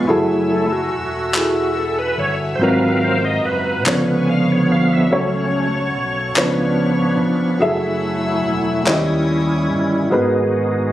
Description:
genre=slow gospel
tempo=48 BPM (dotted quarters)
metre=6/8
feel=straight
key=F# minor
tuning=A4 = 440 Hz
part: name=dark upright piano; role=accompaniment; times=0.0-10.9 s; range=G#2 to E5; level=-20 LUFS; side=equal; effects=none
part: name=bright tonewheel organ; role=sustained chords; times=0.0-10.9 s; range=D3 to G#5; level=-18 LUFS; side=right 1 dB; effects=slow rotary speaker, chorus vibrato
part: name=warm studio string section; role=sustained chords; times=0.0-10.1 s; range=D4 to E6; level=-29 LUFS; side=left 3 dB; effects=none
part: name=fingered electric bass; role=bass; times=0.0-10.9 s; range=E1 to D#2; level=-26 LUFS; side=equal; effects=none
part: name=group handclap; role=percussion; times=1.3-9.3 s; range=none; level=-19 LUFS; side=left 1 dB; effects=none
room=moderate plate reverb, RT60 3.9 s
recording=recorded on a phone in the room, compression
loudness=-15 LUFS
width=side -14 dB against mid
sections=0.0-10.1 A section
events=tonewheel organ solo 0.0-10.1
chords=0.1 F#m9; 2.6 G#13; 3.9 C#7b9; 5.1 F#m/C#; 6.4 C#7b9; 7.6 F#m9; 8.9 D#7b9; 10.1 G#m9

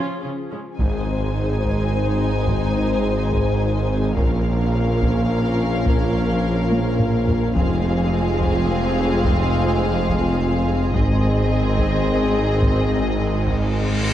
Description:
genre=cinematic, hybrid orchestral and electronic film score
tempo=71 BPM (dotted quarters)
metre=6/8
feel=straight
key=unclear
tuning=A4 = 439 Hz
part: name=rich symphonic viola section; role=accompaniment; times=0.0-14.1 s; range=Ab3 to F4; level=-31 LUFS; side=right 1 dB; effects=none
part: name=hollow soft pad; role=sustained chords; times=0.0-14.1 s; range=F3 to Bb4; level=-28 LUFS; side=left 2 dB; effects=ensemble chorus
part: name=warm symphonic cello section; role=bass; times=0.0-14.1 s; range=F2 to Db3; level=-27 LUFS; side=right 1 dB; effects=none
part: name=warm symphonic violin section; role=melody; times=0.8-14.1 s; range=Eb5 to Ab5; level=-31 LUFS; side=left 2 dB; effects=none
part: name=warm symphonic violin section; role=second line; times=0.8-14.1 s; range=Ab4 to C5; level=-29 LUFS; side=left 4 dB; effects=none
part: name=bright trombone section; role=sustained chords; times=0.8-14.0 s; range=Eb3 to Bb3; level=-30 LUFS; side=right 2 dB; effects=none
part: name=warm French horn section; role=sustained chords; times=0.8-14.0 s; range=C4 to Ab4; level=-28 LUFS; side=left 4 dB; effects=none
part: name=detuned saw bass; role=bass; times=0.8-14.1 s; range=F1 to Bb1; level=-26 LUFS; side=equal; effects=none
part: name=mellow tuba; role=bass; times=0.8-14.1 s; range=F1 to Bb1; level=-27 LUFS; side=right 3 dB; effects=none
part: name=rich symphonic double bass section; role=bass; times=0.8-14.1 s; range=F1 to Bb1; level=-26 LUFS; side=right 2 dB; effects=none
part: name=taiko ensemble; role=drums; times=0.8-14.0 s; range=none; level=-24 LUFS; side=equal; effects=none
part: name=reverse cymbal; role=sound effects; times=13.6-14.1 s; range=none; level=-28 LUFS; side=left 1 dB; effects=none
room=moderate scoring stage reverb, RT60 2.0 s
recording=dark, warm production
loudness=-17 LUFS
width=side -12 dB against mid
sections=0.8-14.1 A section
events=drum fill 6.7-7.6; reverse cymbal 13.6-14.1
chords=0.0 Db; 0.8 Ab; 4.2 Bbm; 7.6 Fm; 10.9 Ab

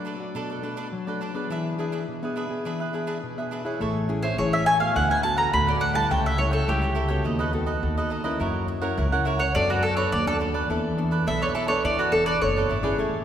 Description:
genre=samba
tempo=105 BPM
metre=4/4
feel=straight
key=unclear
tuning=A4 = 439 Hz
part: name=cavaquinho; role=accompaniment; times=0.0-13.2 s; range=D4 to G#5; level=-30 LUFS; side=right 4 dB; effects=none
part: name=nylon-string guitar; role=accompaniment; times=0.0-13.2 s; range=A2 to C#5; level=-29 LUFS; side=left 2 dB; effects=none
part: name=upright bass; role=bass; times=3.8-13.2 s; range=E1 to E3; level=-27 LUFS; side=equal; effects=none
part: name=mandolin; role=melody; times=4.2-13.2 s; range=F#4 to B5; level=-24 LUFS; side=equal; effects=none
room=wet church reverb, RT60 2.6 s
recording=recorded in a church or concert hall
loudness=-22 LUFS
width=side -9 dB against mid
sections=0.0-3.8 A section; 3.8-13.2 B section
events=mandolin solo 3.8-13.2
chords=0.0 Bm7; 1.5 E7; 3.8 Amaj7; 5.0 D6; 6.1 A7/C#; 7.3 B7/D#; 8.4 F#7; 9.6 Bm7/F#; 10.7 E7sus4

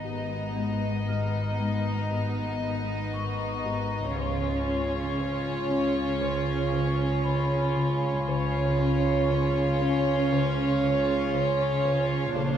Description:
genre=cinematic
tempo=58 BPM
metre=4/4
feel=straight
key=unclear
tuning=A4 = 440 Hz
part: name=rich chamber violin section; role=melody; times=0.0-12.6 s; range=B#4 to D#5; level=-33 LUFS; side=equal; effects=none
part: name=rich studio violin section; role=second line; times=0.0-12.6 s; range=D#4 to E#4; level=-33 LUFS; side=equal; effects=none
part: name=warm studio viola section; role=accompaniment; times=0.0-12.6 s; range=B3 to D4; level=-31 LUFS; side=right 2 dB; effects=none
part: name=folk marimba with medium mallets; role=riff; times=0.0-12.6 s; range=G#2 to C#4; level=-32 LUFS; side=left 3 dB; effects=none
part: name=dark studio double bass section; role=bass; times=0.0-12.6 s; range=G#1 to C#2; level=-33 LUFS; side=right 1 dB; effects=none
part: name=warm studio cello section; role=bass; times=0.0-12.6 s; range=G#2 to C#3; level=-31 LUFS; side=right 1 dB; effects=none
part: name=vibraphone with medium mallets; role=texture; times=0.0-12.4 s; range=A#5 to E#6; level=-41 LUFS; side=left 4 dB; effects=none
part: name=warm studio violin section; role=texture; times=4.2-11.8 s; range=G#5 to C#6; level=-42 LUFS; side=left 4 dB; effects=none
room=wet cathedral reverb, RT60 3.9 s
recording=none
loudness=-24 LUFS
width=side -9 dB against mid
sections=0.0-12.6 A section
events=none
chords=0.0 G#m; 4.2 C#

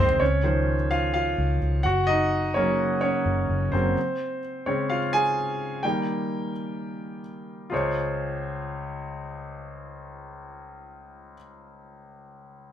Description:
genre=pop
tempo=128 BPM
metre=4/4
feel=straight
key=Db major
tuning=A4 = 440 Hz
part: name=clear grand piano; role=accompaniment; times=0.0-12.7 s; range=Db2 to Ab5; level=-25 LUFS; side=equal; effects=none
part: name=vintage muted fingered electric bass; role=bass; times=0.0-3.9 s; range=Gb1 to Db2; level=-26 LUFS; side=equal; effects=none
room=moderate studio reverb, RT60 0.5 s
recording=band playing live in one room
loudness=-23 LUFS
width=side -10 dB against mid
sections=0.2-7.7 A section; 7.7-11.5 B section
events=grand piano solo 0.2-7.7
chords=0.2 Dbmaj7; 1.8 Gb; 4.0 Dbmaj7; 5.8 Eb; 7.7 Dbmaj7

